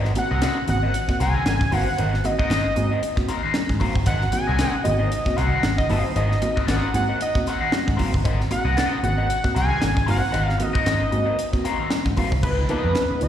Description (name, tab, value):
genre	funk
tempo	115 BPM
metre	4/4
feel	swing 56% on 16ths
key	Ab mixolydian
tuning	A4 = 439 Hz
part	electric guitar at the edge of break-up	accompaniment	0.0-13.1 s	Cb4 to F5	-28 LUFS	left 6 dB	wah, plate reverb, slapback echo
part	mellow reed electric piano	stabs	0.0-13.3 s	Ab2 to Gb4	-29 LUFS	right 2 dB	fast tremolo, plate reverb, slapback echo
part	vintage muted picked electric bass	bass	0.0-13.3 s	G1 to Ab2	-23 LUFS	equal	none
part	crisp fusion drum kit	drums	0.0-13.3 s	crash cymbal, hi-hat, kick drum, snare drum	-25 LUFS	left 1 dB	slapback echo
part	fat analog lead	melody	0.2-13.3 s	Cb5 to Ab5	-25 LUFS	right 1 dB	plate reverb, slapback echo
part	congas	percussion	0.2-13.1 s	none	-33 LUFS	right 6 dB	slapback echo
part	percussive tonewheel organ	sustained chords	12.4-13.3 s	F3 to Eb4	-34 LUFS	left 1 dB	slow rotary speaker, overdrive, chorus vibrato, plate reverb
room	light reverb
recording	live gig heard through the venue's PA, recital hall reverb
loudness	-19 LUFS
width	side -10 dB against mid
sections	0.0-12.4 A section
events	none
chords	0.0 Ab9; 12.4 Db13